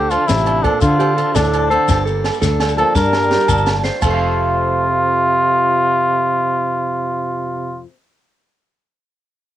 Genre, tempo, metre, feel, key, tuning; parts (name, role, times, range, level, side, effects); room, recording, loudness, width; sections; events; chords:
highlife guitar band; 112 BPM (dotted quarters); 12/8; straight; F major; A4 = 438 Hz
trumpet with cup mute; melody; 0.0-7.8 s; D4 to Bb4; -16 LUFS; left 1 dB
breathy trombone; second line; 0.0-7.8 s; A2 to G3; -24 LUFS; right 7 dB; cassette tape
picked swing-style acoustic guitar; accompaniment; 0.0-7.9 s; F2 to A4; -26 LUFS; left 10 dB; cassette tape
clean electric guitar; arpeggios; 0.0-7.9 s; G4 to A5; -23 LUFS; right 7 dB; cassette tape, analog delay
fingered electric bass; bass; 0.0-7.8 s; F1 to D3; -20 LUFS; left 1 dB
compact cocktail drum kit; drums; 0.1-4.1 s; crash cymbal, hi-hat, kick drum, snare drum; -22 LUFS; equal; cassette tape
agogo bells; percussion; 0.1-4.1 s; -26 LUFS; right 9 dB
shekere; percussion; 0.1-4.2 s; -24 LUFS; left 5 dB
light reverb; home recording on cassette; -14 LUFS; side -12 dB against mid
0.0-4.0 A section; 4.0-8.3 B section
drum fill 1.9-4.0
0.0 Dm7; 1.9 Gmadd9; 4.0 F